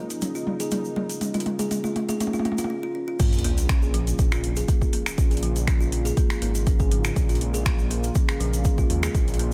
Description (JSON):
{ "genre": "afro house", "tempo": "121 BPM", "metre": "4/4", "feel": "straight", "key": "Bb minor", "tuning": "A4 = 441 Hz", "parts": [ { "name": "warm analog pad", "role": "sustained chords", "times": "0.0-9.5 s", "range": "Db3 to F4", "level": "-38 LUFS", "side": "equal", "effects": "chorus, sidechain pumping" }, { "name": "kalimba", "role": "arpeggios", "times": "0.0-9.5 s", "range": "F3 to Ab4", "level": "-32 LUFS", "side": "equal", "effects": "sidechain pumping, tape echo" }, { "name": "afro-pop drum kit", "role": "drums", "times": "0.1-9.5 s", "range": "crash cymbal, finger snaps, hi-hat, toms", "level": "-32 LUFS", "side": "equal", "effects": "overdrive" }, { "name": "egg shaker", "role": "percussion", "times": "0.1-9.4 s", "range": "none", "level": "-40 LUFS", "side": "equal", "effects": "none" }, { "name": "dark detuned saw bass", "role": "bass", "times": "3.2-9.5 s", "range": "Ab1 to Eb2", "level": "-28 LUFS", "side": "equal", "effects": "sidechain pumping" }, { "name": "electronic kick drum", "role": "drums", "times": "3.2-9.3 s", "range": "none", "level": "-24 LUFS", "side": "equal", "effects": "overdrive" }, { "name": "sub drop", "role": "sound effects", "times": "3.2-5.2 s", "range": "none", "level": "-33 LUFS", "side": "equal", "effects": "none" } ], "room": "little or no reverb", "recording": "none", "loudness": "-24 LUFS", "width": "mono", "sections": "0.0-3.2 A section; 3.2-9.5 B section", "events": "build-up 0.0-3.2; drum fill 0.0-2.7; break 2.7-3.2; drop 3.2-9.5; impact 3.2-5.2", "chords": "0.0 Bbm7" }